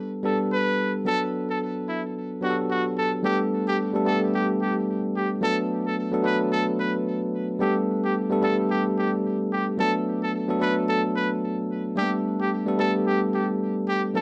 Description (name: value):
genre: afrobeats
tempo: 110 BPM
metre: 4/4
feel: swing 58% on 16ths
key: G major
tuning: A4 = 440 Hz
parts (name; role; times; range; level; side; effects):
- bell-like tine electric piano; accompaniment; 0.0-14.2 s; F#3 to B4; -26 LUFS; equal; none
- bright trumpet; melody; 0.2-14.2 s; E4 to B4; -30 LUFS; equal; none
room: moderate studio reverb, RT60 0.5 s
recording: dark, warm production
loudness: -25 LUFS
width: mono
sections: 0.0-3.2 A section; 3.2-14.2 B section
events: none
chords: 0.0 Gadd9; 1.1 D6; 3.2 Gadd9; 5.4 D6; 7.6 Gadd9; 9.8 D6; 12.0 Gadd9